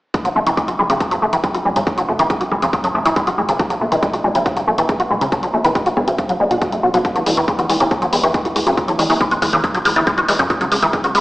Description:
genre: uplifting trance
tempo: 139 BPM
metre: 4/4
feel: straight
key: unclear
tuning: A4 = 436 Hz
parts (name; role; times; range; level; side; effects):
- liquid acid bass; arpeggios; 0.1-11.2 s; C#3 to F#4; -16 LUFS; equal; analog chorus, sidechain pumping, digital delay
- electronic hi-hat; drums; 0.1-11.2 s; none; -28 LUFS; left 1 dB; overdrive
- electronic kick drum; drums; 0.1-11.0 s; none; -23 LUFS; equal; overdrive
- plucky analog bass; bass; 0.2-11.2 s; E1 to F#2; -23 LUFS; equal; sidechain pumping
room: wet lush hall reverb, RT60 2.0 s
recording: played on a big sound system in a bare room, large studio reverb, AM radio sound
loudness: -14 LUFS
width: side -18 dB against mid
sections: 0.1-11.2 A section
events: none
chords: 0.1 N.C.; 3.6 B5; 7.0 Eadd9; 10.5 C#5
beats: | 0.14 0.57 1.00 1.44 | 1.87 2.30 2.73 3.16 | 3.60 4.03 4.46 4.89 | 5.32 5.75 6.18 6.62 | 7.05 7.48 7.91 8.34 | 8.77 9.21 9.64 10.07 | 10.50 10.93

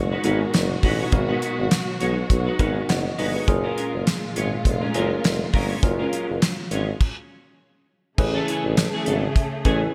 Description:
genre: early-eighties boogie funk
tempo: 102 BPM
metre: 4/4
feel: swing 56% on 16ths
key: unclear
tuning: A4 = 440 Hz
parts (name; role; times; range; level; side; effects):
- warm studio string section; sustained chords; 0.0-9.9 s; A#2 to G#4; -32 LUFS; equal; none
- warm tuba; bass; 0.0-9.9 s; E#1 to B1; -28 LUFS; equal; none
- clean electric guitar; riff; 0.1-9.9 s; E3 to C#5; -32 LUFS; equal; ensemble chorus
- tine electric piano; accompaniment; 0.2-9.9 s; B3 to F#5; -30 LUFS; equal; none
- damped 70s drum kit; drums; 0.2-9.8 s; crash cymbal, handclaps, hi-hat, kick drum, snare drum; -25 LUFS; equal; gated reverb
room: moderate lush hall reverb, RT60 1.8 s, studio reverb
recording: bright 1980s-style digital production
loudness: -23 LUFS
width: mono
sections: 0.0-8.2 A section; 8.2-9.9 B section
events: stop 7.0-8.2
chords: 0.0 G#m7; 3.5 F#maj9; 8.2 Amaj7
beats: 0.54 | 1.12 1.71 2.30 2.89 | 3.48 4.07 4.65 5.24 | 5.83 6.42 7.01 7.59 | 8.18 8.77 9.36

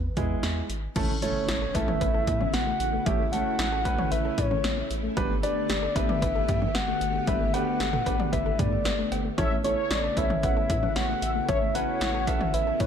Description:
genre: synth-pop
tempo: 114 BPM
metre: 4/4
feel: straight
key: unclear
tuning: A4 = 440 Hz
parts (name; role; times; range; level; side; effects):
- soft octave-layered synth lead; melody; 0.0-12.9 s; B4 to F#5; -29 LUFS; left 1 dB; chorus
- round analog bass; bass; 0.0-12.9 s; G1 to A2; -32 LUFS; equal; none
- warm baby grand piano; accompaniment; 0.2-12.9 s; G#3 to E5; -32 LUFS; right 3 dB; none
- punchy analog drum machine; drums; 0.2-12.9 s; cowbell, crash cymbal, hi-hat, kick drum, snare drum, toms; -29 LUFS; equal; gated reverb
- soft string machine; sustained chords; 1.4-12.9 s; C#3 to G4; -33 LUFS; left 1 dB; ensemble chorus
- soft round pluck; arpeggios; 1.0-12.9 s; E3 to D5; -36 LUFS; left 5 dB; chorus, digital delay
- impact; sound effects; 1.0-3.1 s; none; -39 LUFS; equal; none
- mellow synth brass; second line; 9.4-12.9 s; B4 to F#5; -34 LUFS; left 4 dB; chorus, digital delay
room: light reverb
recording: none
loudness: -24 LUFS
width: side -8 dB against mid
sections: 1.0-12.9 A section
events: impact 1.0-3.1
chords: 0.0 E; 1.0 Aadd9; 5.2 Gadd9; 9.4 Aadd9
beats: 0.43 | 0.96 1.49 2.01 2.54 | 3.06 3.59 4.12 4.64 | 5.17 5.70 6.22 6.75 | 7.27 7.80 8.33 8.85 | 9.38 9.91 10.43 10.96 | 11.48 12.01 12.54

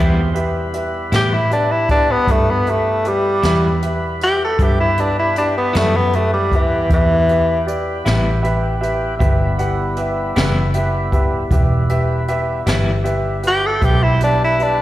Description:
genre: slow blues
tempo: 52 BPM (dotted quarters)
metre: 12/8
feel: straight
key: E minor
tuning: A4 = 440 Hz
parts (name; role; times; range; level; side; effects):
- electric guitar at the edge of break-up; accompaniment; 0.0-12.9 s; E3 to E4; -23 LUFS; left 3 dB; tremolo, slapback echo
- warm upright piano; accompaniment; 0.0-14.8 s; G4 to B5; -23 LUFS; equal; slapback echo
- overdriven tonewheel organ; sustained chords; 0.0-14.8 s; G3 to C5; -27 LUFS; equal; slow rotary speaker
- vintage muted fingered electric bass; bass; 0.0-14.8 s; E1 to A2; -19 LUFS; equal; none
- jazz brush drum kit; drums; 0.4-14.8 s; hi-hat, kick drum, snare drum; -20 LUFS; equal; none
- clear tenor saxophone; melody; 1.2-14.8 s; E3 to A4; -16 LUFS; left 1 dB; slapback echo
room: studio reverb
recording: live gig heard through the venue's PA, recital hall reverb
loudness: -14 LUFS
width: side -14 dB against mid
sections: 0.0-14.8 A section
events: tenor saxophone solo 0.0-14.8; upright piano fill 8.1-9.2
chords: 0.0 Em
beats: 1.13 2.28 3.44 | 4.59 5.74 6.90 8.05 | 9.21 10.36 11.52 12.67 | 13.83

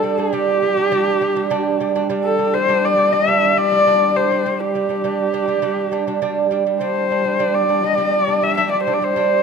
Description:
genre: mongolian traditional, Mongolian folk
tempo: 102 BPM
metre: 4/4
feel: straight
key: G zhi mode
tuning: A4 = 442 Hz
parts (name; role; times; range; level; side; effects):
- warm horsehead fiddle; melody; 0.0-9.4 s; G4 to E5; -18 LUFS; left 3 dB; none
- lute; arpeggios; 0.0-9.4 s; G3 to D4; -20 LUFS; right 9 dB; none
- dark horsehead fiddle; drone; 0.0-9.4 s; G3; -26 LUFS; left 3 dB; none
room: moderate concert hall reverb, RT60 1.8 s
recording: close, detailed microphones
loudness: -15 LUFS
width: side -6 dB against mid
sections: 0.0-9.4 A section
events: none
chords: 0.0 G5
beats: 0.34 | 0.93 1.52 2.11 2.69 | 3.28 3.87 4.46 5.04 | 5.63 6.22 6.81 7.40 | 7.99 8.57 9.16

